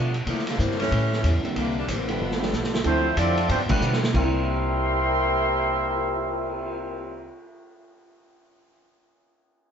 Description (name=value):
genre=jazz, big band swing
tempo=185 BPM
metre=4/4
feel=swing 63% on 8ths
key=C mixolydian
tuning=A4 = 440 Hz
part: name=bright saxophone section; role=melody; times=0.0-2.7 s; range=Bb2 to D4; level=-29 LUFS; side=left 1 dB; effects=none
part: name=archtop guitar, miked and amplified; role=accompaniment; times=0.0-7.7 s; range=G2 to A4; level=-33 LUFS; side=left 3 dB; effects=none
part: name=upright bass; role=bass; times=0.0-7.3 s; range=G1 to C3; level=-27 LUFS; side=equal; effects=none
part: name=vintage drum kit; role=drums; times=0.1-6.7 s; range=crash cymbal, cymbal swell, hi-hat, kick drum, ride cymbal, snare drum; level=-29 LUFS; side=equal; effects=none
part: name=warm baby grand piano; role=accompaniment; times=1.4-7.3 s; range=C3 to Bb4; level=-31 LUFS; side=right 2 dB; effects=none
part: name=dark trombone section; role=second line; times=2.1-7.3 s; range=F2 to E4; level=-30 LUFS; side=left 1 dB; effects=none
part: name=mellow trumpet section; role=melody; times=2.9-7.3 s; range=G3 to C6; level=-25 LUFS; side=right 1 dB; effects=none
room=moderate studio reverb, RT60 0.7 s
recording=band playing live in one room, nothing above 7.7 kHz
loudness=-21 LUFS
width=side -7 dB against mid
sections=0.0-2.9 A section; 2.9-4.1 B section; 4.1-6.7 C section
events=drum fill 2.2-2.9, 3.8-4.1; band accent 3.7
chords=0.3 C9; 0.9 A7; 1.6 C9; 2.2 G9; 2.9 Dm9; 3.5 G7; 4.1 C9